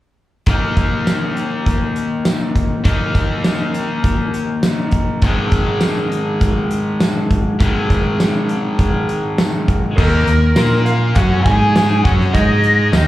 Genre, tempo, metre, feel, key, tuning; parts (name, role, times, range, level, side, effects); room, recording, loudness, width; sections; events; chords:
classic rock; 101 BPM; 4/4; straight; A4 = 440 Hz
raw garage guitar; riff; 0.5-13.1 s; G#2 to A#4; -19 LUFS; left 2 dB; overdrive, slapback echo
big rock drum kit; drums; 0.5-13.1 s; crash cymbal, hi-hat, kick drum, snare drum, tambourine; -17 LUFS; equal
lead guitar through a small cranked amp; melody; 10.0-13.1 s; A#4 to G#5; -18 LUFS; equal; wah, overdrive, slapback echo
fingered electric bass; bass; 10.0-13.1 s; D#2 to A#2; -15 LUFS; right 1 dB
light reverb; live gig heard through the venue's PA, club ambience; -14 LUFS; side -15 dB against mid
0.5-10.0 A section; 10.0-13.1 B section
0.5 D#5; 5.2 G#5; 10.0 D#5; 10.6 A#5; 11.2 F#5; 11.5 G#5; 12.1 F#5; 12.3 G#5